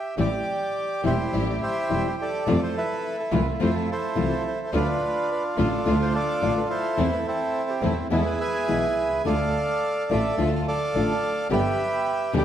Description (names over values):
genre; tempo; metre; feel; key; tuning
tango; 106 BPM; 4/4; rubato; A minor; A4 = 440 Hz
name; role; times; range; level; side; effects
bandoneon; melody; 0.0-12.4 s; C4 to G#5; -25 LUFS; right 2 dB; none
nylon-string guitar; accompaniment; 0.2-12.4 s; B2 to G4; -27 LUFS; left 4 dB; none
warm symphonic string section; stabs; 0.2-12.4 s; G#3 to G4; -33 LUFS; right 2 dB; none
rich double bass; bass; 0.2-12.4 s; E1 to F2; -28 LUFS; right 1 dB; none
room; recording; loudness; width
moderate scoring stage reverb, RT60 1.7 s; none; -22 LUFS; side -10 dB against mid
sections
0.2-12.4 A section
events
stop 0.0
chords
0.2 Am7; 2.5 Fmaj7; 4.7 Dm; 7.0 Am/E; 8.1 E; 9.3 Dm; 11.5 G